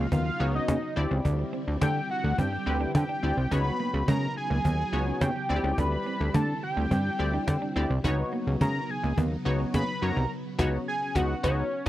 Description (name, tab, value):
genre	early-eighties boogie funk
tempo	106 BPM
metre	4/4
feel	straight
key	unclear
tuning	A4 = 440 Hz
part	fat analog lead	melody	0.0-11.9 s	Db5 to Cb6	-32 LUFS	equal	chorus, phaser
part	string machine, full ensemble	sustained chords	0.0-11.9 s	Db3 to E4	-36 LUFS	equal	ensemble chorus
part	clean electric guitar	riff	0.0-10.3 s	Ab3 to D4	-34 LUFS	right 3 dB	wide subtle chorus
part	plucky analog bass	bass	0.0-11.9 s	C2 to D3	-27 LUFS	equal	none
part	cajon	drums	0.1-11.9 s	none	-27 LUFS	equal	none
part	funky polysynth comp	accompaniment	0.4-11.9 s	Cb4 to D5	-32 LUFS	left 1 dB	chorus
room	little or no reverb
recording	dry, close 1970s-style studio recording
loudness	-25 LUFS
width	side -14 dB against mid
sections	0.0-11.9 A section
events	band accent 10.3-11.9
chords	0.0 Db9sus4; 1.0 D9sus4; 3.5 Db9sus4; 5.5 D9sus4; 8.0 Db9sus4